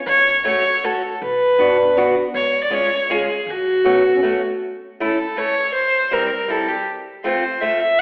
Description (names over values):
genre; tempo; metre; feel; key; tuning
alpine folk, alpine dance band; 159 BPM; 3/4; straight; F# harmonic minor; A4 = 440 Hz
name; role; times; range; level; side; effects
dark fiddle; melody; 0.1-8.0 s; F#4 to E5; -20 LUFS; equal; none
upright bass; bass; 0.1-4.0 s; B1 to F#2; -46 LUFS; equal; none
picked steel-string acoustic guitar; accompaniment; 0.4-7.8 s; G3 to F#4; -25 LUFS; equal; none
mellow euphonium; second line; 1.6-4.6 s; A3 to D4; -27 LUFS; equal; none
room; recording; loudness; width
wet recital hall reverb, RT60 1.5 s; recorded in a church or concert hall, telephone sound; -19 LUFS; mono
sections
0.0-4.6 A section; 4.6-8.0 B section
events
none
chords
0.1 F#m; 1.2 Bm; 2.3 C#; 3.5 F#m; 4.6 A; 5.7 C7; 6.9 F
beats
| 0.07 0.45 0.83 | 1.21 1.58 1.96 | 2.34 2.71 3.09 | 3.46 3.84 4.22 | 4.61 4.99 5.37 | 5.75 6.12 6.50 | 6.87 7.25 7.63 | 8.01